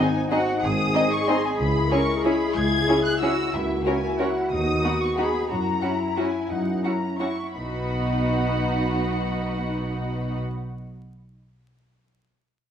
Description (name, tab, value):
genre	classical, orchestral ballroom waltz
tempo	164-200 BPM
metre	3/4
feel	rubato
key	B major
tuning	A4 = 440 Hz
part	muted studio violin section	melody	0.0-10.4 s	E5 to G#6	-29 LUFS	left 2 dB	none
part	muted studio violin section	second line	0.0-10.4 s	F#4 to F#5	-30 LUFS	left 2 dB	none
part	muted studio viola section	accompaniment	0.0-10.4 s	B3 to F#4	-28 LUFS	right 1 dB	none
part	clear French horn section	sustained chords	0.0-10.4 s	G#3 to F#4	-28 LUFS	left 4 dB	none
part	muted studio cello section	bass	0.0-10.4 s	B2 to A#4	-30 LUFS	right 2 dB	none
part	muted studio double bass section	bass	0.6-10.4 s	G#1 to F#2	-28 LUFS	right 2 dB	none
room	wet recital hall reverb, RT60 1.4 s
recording	minimal, uncompressed stereo recording, vinyl crackle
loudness	-21 LUFS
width	side -8 dB against mid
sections	0.0-7.5 A section; 7.5-9.6 B section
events	slowing down 5.0-7.5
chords	0.0 G#7; 1.6 C#m7; 3.5 F#7/C#; 4.5 B/D#; 5.5 F#7; 7.5 B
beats	0.31 | 0.62 0.94 1.27 | 1.59 1.91 2.24 | 2.56 2.88 3.21 | 3.54 3.86 4.20 | 4.52 4.84 5.18 | 5.50 5.82 6.17 | 6.50 6.84 7.20 | 7.54 7.89 8.25 | 8.59 8.93 9.29